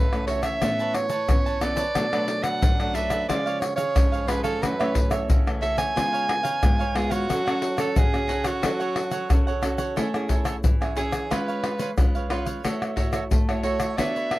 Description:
samba and choro; 90 BPM; 4/4; straight; F# minor, A major from 10.0 s; A4 = 441 Hz
bright soprano saxophone; melody; 0.0-14.4 s; F#4 to G#5; -26 LUFS; right 2 dB
cavaquinho; accompaniment; 0.0-14.4 s; D4 to A5; -32 LUFS; right 5 dB
nylon-string guitar; accompaniment; 0.0-14.4 s; F#2 to C#5; -29 LUFS; equal
tube shaker, pandeiro, tamborim and surdo; percussion; 0.1-14.4 s; -24 LUFS; left 1 dB
light reverb; dry, close 1970s-style studio recording; -21 LUFS; side -17 dB against mid
0.0-10.0 A section; 10.0-14.4 B section
soprano saxophone solo 10.0-14.4
0.0 F#m7; 0.6 Aadd9; 2.0 Bm7; 3.3 C#; 4.6 F#m7; 6.0 C#7; 7.3 F#m; 10.0 Amaj7; 11.3 C#7/G#; 12.6 F#m7/A
0.62 1.29 | 1.96 2.63 3.30 3.96 | 4.63 5.30 5.97 6.63 | 7.30 7.97 8.64 9.30 | 9.97 10.64 11.31 11.98 | 12.64 13.31 13.98

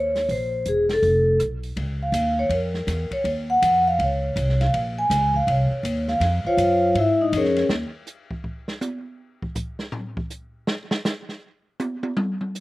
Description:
jazz, small-group swing and bop; 162 BPM; 4/4; swing 64% on 8ths; Bb minor; A4 = 439 Hz
vibraphone with medium mallets; melody; 0.0-7.6 s; Db4 to Ab5; -20 LUFS; equal; slapback echo
upright bass; bass; 0.0-7.8 s; E1 to Ab2; -25 LUFS; equal
open jazz drum kit; drums; 0.2-12.6 s; hi-hat, kick drum, ride cymbal, rim click, snare drum, toms; -30 LUFS; equal
little or no reverb; recorded outdoors, with no room sound; -20 LUFS; side -18 dB against mid
0.0-1.8 A section; 1.8-12.6 B section
vibraphone solo 1.8-12.6; drum solo 7.7-12.6
0.3 Bbsus2; 1.0 F; 1.8 Bbm; 3.3 Ebm9; 4.7 Bbm9; 7.7 N.C.
| 0.29 0.66 1.03 1.40 | 1.77 2.14 2.51 2.88 | 3.25 3.63 4.00 4.37 | 4.74 5.11 5.48 5.85 | 6.22 6.59 6.96 7.34 | 7.71 8.08 8.45 8.82 | 9.20 9.57 9.94 10.31 | 10.69 11.06 11.43 11.81 | 12.18 12.55

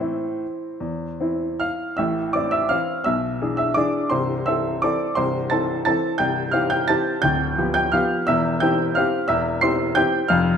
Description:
classical, piano waltz; 144-186 BPM; 3/4; rubato; A minor; A4 = 440 Hz
clear upright piano; solo; 0.0-10.6 s; C1 to C7; -19 LUFS; equal
moderate recital hall reverb, RT60 1.6 s; close, detailed microphones; -19 LUFS; side -7 dB against mid
0.0-2.0 A section; 2.0-10.6 A section
0.0 Am; 3.1 E7/B; 4.1 Am/C; 6.2 C; 7.2 G7/D; 8.3 C/E
0.00 0.42 | 0.82 1.21 1.61 | 2.00 2.35 2.71 | 3.07 3.42 3.77 | 4.12 4.48 4.84 | 5.17 5.51 5.87 | 6.20 6.54 6.90 | 7.24 7.59 7.95 | 8.29 8.62 8.96 | 9.30 9.63 9.98 | 10.31

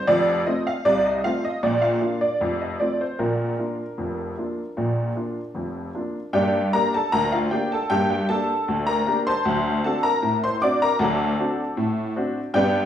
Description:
ragtime piano; 77 BPM; 2/4; straight; Bb major; A4 = 440 Hz
honky-tonk upright piano; solo; 0.0-12.9 s; F1 to D6; -20 LUFS; equal
wet large studio reverb, RT60 1.2 s; band playing live in one room, studio reverb; -20 LUFS; side -10 dB against mid
0.0-6.3 A section; 6.3-12.9 B section
0.1 F; 1.6 Bb; 2.4 F; 3.2 Bb; 6.3 Gm; 9.4 D7
| 0.08 0.85 | 1.63 2.41 | 3.20 3.98 | 4.77 5.55 | 6.34 7.12 | 7.90 8.67 | 9.45 10.22 | 11.00 11.78 | 12.55

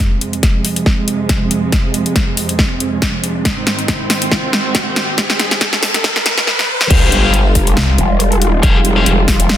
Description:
heavy wobble dubstep; 139 BPM; 4/4; swing 55% on 16ths, half-time; F minor; A4 = 437 Hz
dark chamber string section; sustained chords; 0.0-9.6 s; F2 to F4; -19 LUFS; right 2 dB; sidechain pumping, low-pass filter
big-room dance drum kit; drums; 0.0-9.6 s; crash cymbal, hi-hat, snare drum; -16 LUFS; left 1 dB
electronic kick drum; drums; 0.0-9.4 s; -15 LUFS; equal
riser and sub drop; sound effects; 0.0-8.6 s; -22 LUFS; equal
scooped high-gain guitar; stabs; 6.9-9.1 s; G4 to F5; -17 LUFS; left 4 dB; distortion, ping-pong delay
growl bass; bass; 6.9-9.6 s; F1 to G1; -14 LUFS; equal; chorus, overdrive
snarling distorted saw bass; bass; 7.8-8.0 s; C2; -14 LUFS; equal; distortion, overdrive
light reverb, digital ambience; dense, heavily limited modern master, high-pass filter; -12 LUFS; side -11 dB against mid
0.0-6.9 A section; 6.9-9.6 B section
build-up 0.0-6.9; drum fill 0.0-6.5, 6.5-6.9; riser 0.0-6.9; filter sweep 0.0-6.9; drop 6.9-9.6; impact 6.9-8.6
0.0 Fm; 3.5 Ab; 6.9 Fmadd9
| 0.00 0.43 0.86 1.29 | 1.73 2.16 2.59 3.02 | 3.45 3.88 4.32 4.75 | 5.18 5.61 6.04 6.47 | 6.91 7.34 7.77 8.20 | 8.63 9.06 9.49

